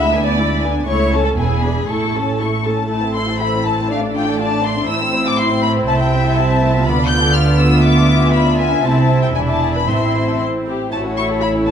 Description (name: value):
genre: quick classical-period movement for string orchestra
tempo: 120 BPM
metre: 2/4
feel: rubato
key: A minor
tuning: A4 = 438 Hz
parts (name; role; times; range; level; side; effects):
- warm studio violin section; melody; 0.0-11.7 s; F5 to G6; -20 LUFS; left 4 dB; none
- warm chamber violin section; second line; 0.0-11.7 s; A3 to E5; -22 LUFS; left 3 dB; none
- rich studio viola section; accompaniment; 0.0-11.7 s; G#3 to A4; -20 LUFS; right 1 dB; none
- warm studio cello section; bass; 0.0-11.7 s; C#2 to F#4; -21 LUFS; right 1 dB; none
- warm studio double bass section; bass; 0.0-11.7 s; E1 to D2; -20 LUFS; right 2 dB; none
room: wet recital hall reverb, RT60 1.4 s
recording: dark, warm production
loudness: -14 LUFS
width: side -8 dB against mid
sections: 0.0-2.9 A section; 2.9-10.9 B section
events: none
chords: 0.0 E7/D; 0.9 A/C#; 1.4 E7; 1.9 A; 2.9 Am; 3.9 Dm/A; 4.9 Am; 5.9 Am/C; 6.9 Bdim/D; 8.8 Am/C; 9.4 E7; 9.9 Am; 10.9 A